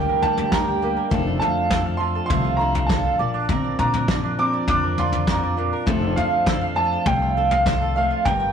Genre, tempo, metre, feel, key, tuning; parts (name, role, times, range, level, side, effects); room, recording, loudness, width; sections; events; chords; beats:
indie folk with a building arrangement; 101 BPM; 4/4; straight; F major; A4 = 442 Hz
bright upright piano; melody; 0.0-8.5 s; F5 to D6; -25 LUFS; equal
fingerpicked steel-string acoustic guitar; accompaniment; 0.0-8.5 s; F2 to A4; -26 LUFS; left 2 dB
mandolin; arpeggios; 0.0-8.5 s; D4 to G5; -24 LUFS; right 4 dB; analog delay
upright bass; bass; 0.0-8.5 s; F1 to Bb2; -26 LUFS; left 1 dB
soft brush drum kit; drums; 0.2-8.4 s; kick drum, snare drum, toms; -24 LUFS; left 1 dB
moderate stone room reverb, RT60 1.4 s; rough rehearsal-room recording; -18 LUFS; side -7 dB against mid
0.0-8.5 A section
0.0 Gm; 1.1 F6; 3.2 Bbadd9; 5.9 F6
0.53 | 1.12 1.71 2.31 2.90 | 3.49 4.09 4.68 5.28 | 5.87 6.47 7.06 7.66 | 8.26